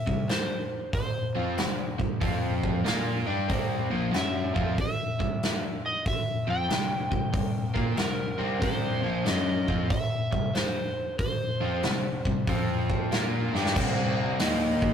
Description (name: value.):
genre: blues rock power trio and southern rock.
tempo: 94 BPM.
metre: 4/4.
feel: swing 66% on 8ths.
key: C mixolydian.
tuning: A4 = 440 Hz.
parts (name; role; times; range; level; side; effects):
overdriven slide guitar; melody; 0.0-13.1 s; Bb4 to G5; -33 LUFS; right 1 dB; none.
crunchy overdriven guitar; riff; 0.1-14.9 s; Bb2 to Bb4; -29 LUFS; left 1 dB; none.
fuzz fingered electric bass; bass; 0.1-14.9 s; Bb1 to Bb2; -34 LUFS; equal; overdrive.
big rock drum kit; drums; 0.1-14.9 s; crash cymbal, hi-hat, kick drum, snare drum; -28 LUFS; equal; none.
room: moderate booth ambience, RT60 0.2 s.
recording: rough rehearsal-room recording, tube saturation.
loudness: -25 LUFS.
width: side -8 dB against mid.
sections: 0.0-13.8 A section; 13.8-14.9 B section.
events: drum fill 13.4-13.8.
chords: 0.0 C5; 2.2 F5; 2.9 C; 12.5 F5; 13.1 Gm7; 13.8 C5; 14.4 Eb5.